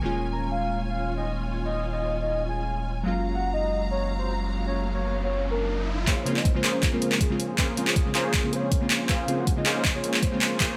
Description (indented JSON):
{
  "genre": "future bass",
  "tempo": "159 BPM",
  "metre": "4/4",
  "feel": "swing 54% on 16ths, half-time",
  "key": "Bb minor",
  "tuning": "A4 = 439 Hz",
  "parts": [
    { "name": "soft octave-layered synth lead", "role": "melody", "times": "0.0-10.8 s", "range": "Ab4 to Bb5", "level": "-34 LUFS", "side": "equal", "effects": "chorus, phaser, sidechain pumping, tape echo" },
    { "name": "glassy digital keys", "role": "accompaniment", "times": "0.0-10.4 s", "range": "Db3 to F4", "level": "-33 LUFS", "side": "equal", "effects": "chorus, sidechain pumping" },
    { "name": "dark studio string section", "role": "sustained chords", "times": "0.0-10.8 s", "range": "Gb3 to Bb5", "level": "-40 LUFS", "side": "equal", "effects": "sidechain pumping, low-pass filter" },
    { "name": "saturated sub bass", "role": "bass", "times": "0.0-10.8 s", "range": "Eb1 to Bb1", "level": "-35 LUFS", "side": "equal", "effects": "sidechain pumping, high-pass filter" },
    { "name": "riser", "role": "sound effects", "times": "3.9-6.1 s", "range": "none", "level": "-39 LUFS", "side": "equal", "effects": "none" },
    { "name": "supersaw stab", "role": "riff", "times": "6.1-10.8 s", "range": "Bb3 to C5", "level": "-33 LUFS", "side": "equal", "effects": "sidechain pumping, low-pass filter" },
    { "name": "dubstep drum kit", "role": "drums", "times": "6.1-10.7 s", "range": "handclaps, hi-hat", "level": "-28 LUFS", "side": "equal", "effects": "low-pass filter on snare, studio reverb, low-pass filter on hats" },
    { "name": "electronic kick drum", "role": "drums", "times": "6.1-10.7 s", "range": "none", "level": "-27 LUFS", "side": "equal", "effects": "overdrive, studio reverb" }
  ],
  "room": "light reverb",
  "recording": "none",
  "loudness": "-26 LUFS",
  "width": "mono",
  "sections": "0.0-6.1 A section; 6.1-10.8 B section",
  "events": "riser 3.9-6.1; build-up 6.1-10.8; drum fill 6.1-10.8; filter sweep on supersaw synth 6.1-10.8",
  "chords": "0.0 Eb9sus4; 3.1 Gbmaj7; 6.1 Bbm9"
}